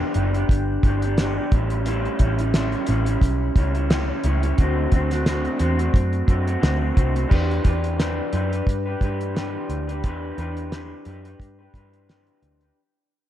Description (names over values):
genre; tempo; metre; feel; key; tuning
indie pop, bedroom pop; 88 BPM; 4/4; swing 55% on 16ths; E minor; A4 = 439 Hz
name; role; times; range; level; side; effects
electric guitar through a small old amp; accompaniment; 0.0-12.8 s; A2 to B4; -25 LUFS; equal; lush chorus, vibrato effect
cloth-damped thuddy drum kit; drums; 0.1-12.8 s; crash cymbal, hi-hat, kick drum, snare drum; -21 LUFS; equal; none
vintage muted picked electric bass; bass; 0.2-12.7 s; F#1 to G2; -24 LUFS; equal; none
room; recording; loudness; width
light reverb, small room ambience; none; -19 LUFS; side -12 dB against mid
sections
0.0-7.3 A section; 7.3-12.8 B section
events
fade-out 7.3-12.8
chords
0.0 Em7; 1.5 A7; 4.6 D7; 7.3 Em7